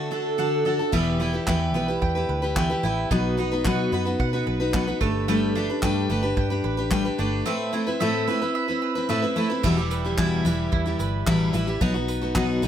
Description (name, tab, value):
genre	acoustic pop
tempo	110 BPM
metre	4/4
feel	straight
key	E minor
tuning	A4 = 441 Hz
part	picked steel-string acoustic guitar	accompaniment	0.0-12.7 s	E2 to B4	-23 LUFS	left 2 dB	none
part	mandolin	arpeggios	0.0-12.7 s	G3 to G5	-29 LUFS	right 8 dB	none
part	vintage muted fingered electric bass	bass	0.9-12.7 s	E1 to B2	-28 LUFS	right 1 dB	none
part	natural country drum kit	drums	0.9-12.7 s	crash cymbal, handclaps, kick drum, tambourine	-29 LUFS	right 1 dB	none
room	light reverb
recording	none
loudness	-21 LUFS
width	side -9 dB against mid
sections	0.9-9.6 A section; 9.6-12.7 B section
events	none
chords	0.0 D; 0.9 Em; 3.1 B; 5.0 Gadd9; 7.5 Amadd9; 9.6 Em; 11.8 B